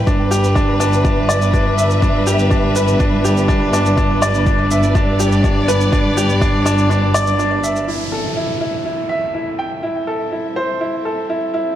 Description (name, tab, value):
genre	piano and strings electronica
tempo	123 BPM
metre	4/4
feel	straight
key	unclear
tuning	A4 = 439 Hz
part	dark symphonic string section	sustained chords	0.0-11.8 s	G3 to E5	-22 LUFS	left 1 dB	sidechain pumping
part	clear upright piano	riff	0.0-11.8 s	D4 to G5	-18 LUFS	right 1 dB	digital delay
part	dark studio double bass section	bass	0.0-7.9 s	G1	-18 LUFS	equal	sidechain pumping
part	electronic kick drum	drums	0.1-6.5 s	none	-18 LUFS	equal	none
part	shaker	drums	0.1-7.9 s	none	-28 LUFS	right 2 dB	none
part	downlifter	sound effects	7.9-11.8 s	none	-28 LUFS	equal	none
room	moderate echo chamber reverb, RT60 1.2 s, studio reverb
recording	none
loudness	-14 LUFS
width	side -11 dB against mid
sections	0.0-7.9 A section; 7.9-11.8 B section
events	kick drops out 6.9-7.9; fade-in on string section 7.9-11.8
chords	0.1 Em7/G; 7.9 Am7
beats	| 0.07 0.56 1.05 1.54 | 2.02 2.51 3.00 3.49 | 3.98 4.46 4.95 5.44 | 5.93 6.41 6.90 7.39 | 7.88 8.37 8.85 9.34 | 9.83 10.32 10.80 11.29